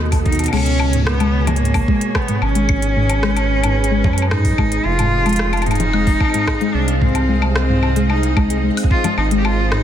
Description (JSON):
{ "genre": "IDM", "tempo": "111 BPM", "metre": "4/4", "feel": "straight", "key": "unclear", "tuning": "A4 = 440 Hz", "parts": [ { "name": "soft string machine", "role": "sustained chords", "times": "0.0-9.8 s", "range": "B2 to G#5", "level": "-26 LUFS", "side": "right 1 dB", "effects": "ensemble chorus" }, { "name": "dark detuned saw bass", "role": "bass", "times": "0.0-9.8 s", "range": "F1 to F#2", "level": "-18 LUFS", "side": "right 1 dB", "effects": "none" }, { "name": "soft round pluck", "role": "arpeggios", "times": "0.1-9.8 s", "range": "G#2 to A4", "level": "-21 LUFS", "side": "left 2 dB", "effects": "wide subtle chorus, ping-pong delay" }, { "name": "electronic kick drum", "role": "drums", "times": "0.1-9.0 s", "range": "none", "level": "-18 LUFS", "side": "right 1 dB", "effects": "none" }, { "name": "organic electronic drum kit", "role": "drums", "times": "0.1-9.8 s", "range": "congas, crash cymbal, hi-hat, rim click, woodblock", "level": "-24 LUFS", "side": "left 3 dB", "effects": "none" }, { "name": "rich cello", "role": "melody", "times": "0.3-9.8 s", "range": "Bb3 to G4", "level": "-21 LUFS", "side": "right 1 dB", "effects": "vintage 12-bit sampler grit, tape echo" } ], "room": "light reverb, digital ambience", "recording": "dense, heavily limited modern master", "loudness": "-14 LUFS", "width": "side -10 dB against mid", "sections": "0.0-9.8 A section", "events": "drum fill 0.3", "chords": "0.0 B7; 0.5 C#5; 4.9 Fm7; 9.2 G#maj7" }